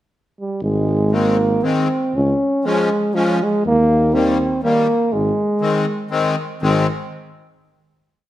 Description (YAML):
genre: alpine folk, alpine dance band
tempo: 120 BPM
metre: 3/4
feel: swing 54% on 8ths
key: Ab major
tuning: A4 = 440 Hz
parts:
  - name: warm euphonium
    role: melody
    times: 0.4-6.9 s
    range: F3 to Db4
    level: -17 LUFS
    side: right 1 dB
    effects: none
  - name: warm tuba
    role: bass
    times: 0.6-6.9 s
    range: Ab1 to Eb2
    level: -20 LUFS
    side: equal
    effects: none
  - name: musette accordion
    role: accompaniment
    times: 1.1-6.9 s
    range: Eb3 to Db4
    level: -21 LUFS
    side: left 3 dB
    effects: none
room: moderate recital hall reverb, RT60 1.3 s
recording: none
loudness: -15 LUFS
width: side -13 dB against mid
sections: 0.0-0.6 pickup bar; 0.6-6.6 A section; 6.6-8.1 final chord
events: none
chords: 0.0 N.C.; 0.6 Ab; 2.1 Db; 3.6 Eb; 5.1 Ab